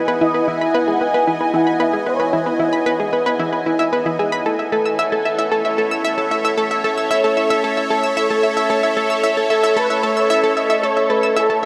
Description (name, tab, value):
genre	ambient, sequencer-driven space music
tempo	113 BPM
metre	4/4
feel	straight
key	unclear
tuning	A4 = 438 Hz
part	lush unison pad	sustained chords	0.0-11.7 s	E4 to G#5	-21 LUFS	equal	chorus, phaser
part	analog pluck	riff	0.1-11.7 s	E4 to E6	-21 LUFS	equal	chorus, tape echo
part	expressive portamento lead	melody	0.2-2.6, 9.5-11.7 s	A4 to G#5	-25 LUFS	equal	ensemble chorus, tape echo
room	wet huge ambient reverb, RT60 9.3 s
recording	none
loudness	-18 LUFS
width	mono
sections	0.0-11.7 A section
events	none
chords	0.0 Emaj7; 4.5 A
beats	| 0.21 0.74 1.27 1.80 | 2.33 2.87 3.40 3.93 | 4.46 4.99 5.52 6.05 | 6.58 7.11 7.64 8.18 | 8.71 9.24 9.77 10.30 | 10.83 11.36